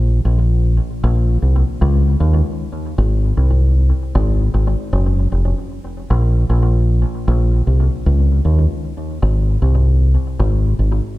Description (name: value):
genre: reggae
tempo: 77 BPM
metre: 4/4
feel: swing 62% on 16ths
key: unclear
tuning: A4 = 438 Hz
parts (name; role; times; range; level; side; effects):
- deep dub fingered electric bass; solo; 0.0-11.0 s; F1 to Eb2; -14 LUFS; equal; analog delay
room: moderate echo chamber reverb, RT60 1.8 s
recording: echo-heavy mix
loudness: -14 LUFS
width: side -17 dB against mid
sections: 0.0-11.2 A section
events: none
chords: none